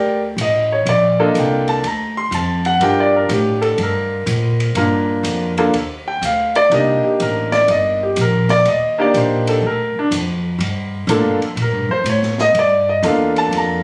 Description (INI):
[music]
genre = jazz piano trio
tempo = 123 BPM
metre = 4/4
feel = swing 67% on 8ths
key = G minor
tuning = A4 = 440 Hz
[part]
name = warm baby grand piano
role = melody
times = 0.0-13.8 s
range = Bb3 to C6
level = -18 LUFS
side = equal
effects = none
[part]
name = upright bass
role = bass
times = 0.0-13.8 s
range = G1 to Bb2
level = -24 LUFS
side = equal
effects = none
[part]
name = open jazz drum kit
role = drums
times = 0.4-13.7 s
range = hi-hat, ride cymbal, snare drum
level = -30 LUFS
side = equal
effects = none
[sound]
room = light reverb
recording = recorded on a phone in the room, studio reverb, compression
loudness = -17 LUFS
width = mono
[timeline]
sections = 0.0-13.8 A section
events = grand piano solo 0.0-13.8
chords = 0.0 Gm7; 6.7 Cm9; 10.6 Gm7